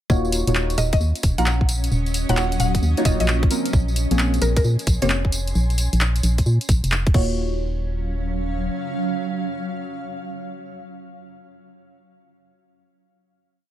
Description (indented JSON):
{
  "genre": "UK garage, two-step garage",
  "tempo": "132 BPM",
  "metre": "4/4",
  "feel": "swing 66% on 16ths",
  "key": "Eb minor",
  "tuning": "A4 = 440 Hz",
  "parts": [
    { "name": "deep mellow chord stab", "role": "stabs", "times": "0.1-10.1 s", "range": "F3 to Db5", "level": "-26 LUFS", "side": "left 1 dB", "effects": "chorus, phaser, dub echo" },
    { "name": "organ-like FM bass", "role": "bass", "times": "0.1-8.7 s", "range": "Eb1 to Bb2", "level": "-21 LUFS", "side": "equal", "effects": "sidechain pumping" },
    { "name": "electronic kick drum", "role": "drums", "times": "0.1-7.3 s", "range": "none", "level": "-18 LUFS", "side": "equal", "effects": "none" },
    { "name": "punchy analog drum machine", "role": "drums", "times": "0.1-7.3 s", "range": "crash cymbal, handclaps, hi-hat, rim click, tambourine", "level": "-27 LUFS", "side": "equal", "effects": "overdrive" },
    { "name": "granular cloud pad", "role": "texture", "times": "1.3-10.5 s", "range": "Gb3 to C6", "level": "-29 LUFS", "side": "right 1 dB", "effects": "built-in reverb, sidechain pumping" },
    { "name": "mallet-like synth pluck", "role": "melody", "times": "0.8-5.6 s", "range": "Bb4 to Gb5", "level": "-28 LUFS", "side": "equal", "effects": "chorus, dub echo" }
  ],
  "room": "little or no reverb",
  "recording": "none",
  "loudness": "-18 LUFS",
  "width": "side -12 dB against mid",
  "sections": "0.1-7.4 drop; 7.4-11.0 final note",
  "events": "drop 0.1-7.4",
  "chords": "0.1 Ebm9; 3.5 Bbm9; 7.1 Ebm9",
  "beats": "| 0.10 0.55 1.01 1.46 | 1.92 2.37 2.83 3.28 | 3.73 4.19 4.64 5.10 | 5.55 6.01 6.46 6.92 | 7.37 7.83 8.28 8.73 | 9.19 9.64 10.10"
}